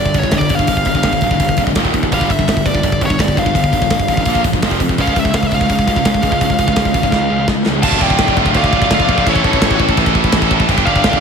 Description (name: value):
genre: heavy metal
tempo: 168 BPM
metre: 4/4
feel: straight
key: D harmonic minor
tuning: A4 = 440 Hz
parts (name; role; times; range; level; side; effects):
- high-gain lead guitar; melody; 0.0-11.2 s; C#5 to A5; -19 LUFS; left 1 dB; distortion, slapback echo, ping-pong delay
- distorted electric guitar; riff; 0.0-11.2 s; Eb2 to A4; -20 LUFS; right 11 dB; overdrive, slapback echo
- heavy high-gain guitar; riff; 0.0-11.2 s; D2 to C#4; -21 LUFS; left 11 dB; distortion
- fuzz picked electric bass; bass; 0.0-11.2 s; D1 to F2; -20 LUFS; equal; overdrive
- tight metal drum kit; drums; 0.1-11.2 s; crash cymbal, hi-hat, kick drum, snare drum; -17 LUFS; equal; none
- high-gain lead guitar; second line; 7.8-11.2 s; A4 to F5; -24 LUFS; right 4 dB; distortion, slapback echo, ping-pong delay
- scooped high-gain guitar; riff; 7.8-11.2 s; D2 to A3; -21 LUFS; equal; none
room: moderate lush hall reverb, RT60 1.9 s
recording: big arena sound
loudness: -12 LUFS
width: side -6 dB against mid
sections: 0.0-7.8 A section; 7.8-11.2 B section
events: drum fill 7.1-7.8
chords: 0.0 G5; 1.8 Eb5; 2.1 G5; 4.3 Bb5; 4.6 F5; 5.0 C#; 7.8 Dm; 9.3 A; 10.7 G5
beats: 0.33 | 0.69 1.05 1.41 1.77 | 2.12 2.48 2.84 3.20 | 3.56 3.91 4.27 4.63 | 4.99 5.34 5.70 6.06 | 6.42 6.77 7.13 7.49 | 7.84 8.20 8.56 8.91 | 9.27 9.62 9.98 10.34 | 10.69 11.05